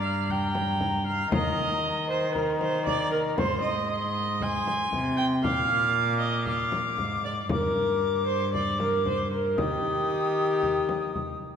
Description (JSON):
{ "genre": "classical, renaissance-style consort dance", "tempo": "116 BPM", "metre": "4/4", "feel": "straight", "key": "unclear", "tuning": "A4 = 440 Hz", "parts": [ { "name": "alto recorder", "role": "melody", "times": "0.0-11.4 s", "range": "Bb5 to Eb6", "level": "-32 LUFS", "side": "left 5 dB", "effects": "none" }, { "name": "rich viola", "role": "second line", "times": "0.0-11.4 s", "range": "G4 to Ab5", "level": "-27 LUFS", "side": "right 1 dB", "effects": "none" }, { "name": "warm cello", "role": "bass", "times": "0.0-11.5 s", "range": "G2 to Eb3", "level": "-30 LUFS", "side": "equal", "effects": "none" }, { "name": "frame drum", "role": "percussion", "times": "0.3-11.4 s", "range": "none", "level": "-34 LUFS", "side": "left 2 dB", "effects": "none" } ], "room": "wet concert hall reverb, RT60 1.9 s", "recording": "none", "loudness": "-24 LUFS", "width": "side -7 dB against mid", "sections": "0.0-11.6 A section", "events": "none", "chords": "0.0 Gm; 1.3 Eb5; 3.4 Ab; 5.4 Bb; 7.5 Gm; 9.6 Eb" }